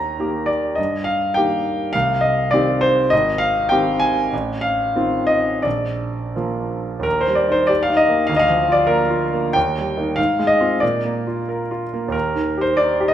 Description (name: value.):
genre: classical, romantic character piece for solo piano.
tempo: 83-104 BPM.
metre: 2/4.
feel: rubato.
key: Eb major.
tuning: A4 = 440 Hz.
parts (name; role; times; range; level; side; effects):
clear concert grand piano; solo; 0.0-13.1 s; Ab1 to Bb5; -16 LUFS; equal; none.
room: wet recital hall reverb, RT60 1.4 s.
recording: none.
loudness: -16 LUFS.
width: side -10 dB against mid.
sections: 0.0-7.0 A section; 7.0-13.1 B section.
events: none.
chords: 0.0 Eb; 0.8 Eb/G; 1.9 Cm; 3.1 Abmaj7; 4.3 F7/A; 5.6 Bb; 7.0 Eb; 8.3 Bb/D; 9.6 Eb; 10.2 Fm/Ab; 10.8 Bb; 12.1 Eb.